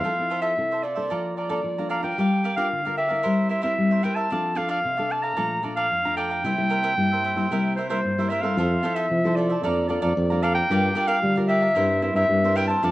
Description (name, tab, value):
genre	samba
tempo	113 BPM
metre	4/4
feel	straight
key	F major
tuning	A4 = 438 Hz
part	bright clarinet	melody	0.0-12.9 s	C5 to Bb5	-24 LUFS	equal	none
part	cavaquinho	accompaniment	0.0-12.9 s	D4 to Bb5	-30 LUFS	right 4 dB	none
part	nylon-string guitar	accompaniment	0.0-12.9 s	F2 to Bb4	-27 LUFS	left 2 dB	none
part	warm tuba	bass	8.6-12.9 s	F2 to G3	-24 LUFS	equal	none
room	moderate large studio reverb, RT60 0.8 s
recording	worn, warbling old tape, cassette tape, warbly pitch drift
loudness	-21 LUFS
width	side -16 dB against mid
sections	0.0-8.6 A section; 8.6-12.9 B section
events	none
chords	0.0 Fmaj7; 1.1 Bbmaj7/F; 2.2 Gm7; 3.2 C7/G; 4.3 F6; 5.4 Bbmaj7; 6.4 C7; 8.6 Fmaj7; 9.6 Bbmaj7/F; 10.7 Gm7; 11.8 C7/G